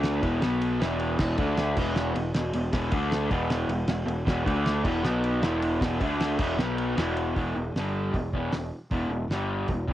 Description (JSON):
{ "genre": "garage rock duo or trio", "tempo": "155 BPM", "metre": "4/4", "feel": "straight", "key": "unclear", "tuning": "A4 = 435 Hz", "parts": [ { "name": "raw garage guitar", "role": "riff", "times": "0.0-9.9 s", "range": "E2 to D4", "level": "-27 LUFS", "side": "equal", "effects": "overdrive, cassette tape" }, { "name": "fuzz picked electric bass", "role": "bass", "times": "0.0-9.9 s", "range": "E1 to D2", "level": "-31 LUFS", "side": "equal", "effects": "overdrive" }, { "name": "cloth-damped thuddy drum kit", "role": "drums", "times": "0.0-9.9 s", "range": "crash cymbal, hi-hat, kick drum, ride cymbal, snare drum", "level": "-30 LUFS", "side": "equal", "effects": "none" } ], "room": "small room ambience", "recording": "home recording on cassette", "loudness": "-24 LUFS", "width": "side -13 dB against mid", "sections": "0.0-7.4 A section; 7.4-9.9 B section", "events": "none", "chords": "0.2 E5; 0.4 B5; 0.8 E5; 1.4 D5; 1.8 E5; 2.9 D5; 3.3 E5; 4.5 D5; 4.8 E5; 5.0 B5; 5.4 E5; 6.0 D5; 6.4 E5; 6.6 B5; 7.0 E5; 7.7 G5; 8.1 E5; 9.3 G5", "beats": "0.03 0.42 0.80 | 1.19 1.57 1.96 2.34 | 2.72 3.11 3.50 3.88 | 4.27 4.65 5.04 5.42 | 5.81 6.20 6.58 6.97 | 7.36 7.74 8.13 8.52 | 8.91 9.29 9.68" }